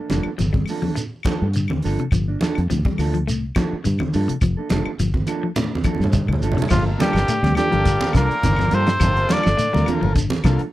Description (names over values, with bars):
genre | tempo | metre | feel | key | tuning
afrobeat | 104 BPM | 4/4 | straight | G minor | A4 = 441 Hz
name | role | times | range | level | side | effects
mellow electric guitar | stabs | 0.0-10.6 s | F3 to A4 | -26 LUFS | right 4 dB | none
clean electric guitar | arpeggios | 0.1-10.6 s | C3 to A3 | -26 LUFS | left 5 dB | none
fingered electric bass | bass | 0.1-10.6 s | F1 to G2 | -21 LUFS | equal | none
warm soul drum kit | drums | 0.1-10.7 s | crash cymbal, hi-hat, kick drum, snare drum | -22 LUFS | equal | none
congas | percussion | 0.1-10.4 s | none | -26 LUFS | right 3 dB | none
shekere | percussion | 0.1-10.6 s | none | -28 LUFS | right 1 dB | none
claves | percussion | 0.2-10.6 s | none | -34 LUFS | left 8 dB | none
clear trumpet | melody | 6.7-9.9 s | F4 to D5 | -21 LUFS | equal | none
bright tenor saxophone | second line | 6.7-9.9 s | F3 to D4 | -31 LUFS | right 4 dB | none
raspy baritone saxophone | second line | 6.7-9.9 s | F2 to D3 | -32 LUFS | left 3 dB | none
combo organ | accompaniment | 6.8-10.6 s | Bb3 to Bb4 | -30 LUFS | left 4 dB | none
room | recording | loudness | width
little or no reverb | dry, close 1970s-style studio recording | -17 LUFS | side -15 dB against mid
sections
0.0-6.7 A section; 6.7-10.7 B section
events
drum fill 5.6-6.7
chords
0.0 Gm9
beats
0.39 0.96 1.54 | 2.12 2.69 3.27 3.85 | 4.42 5.00 5.57 6.15 | 6.72 7.29 7.87 8.44 | 9.02 9.59 10.16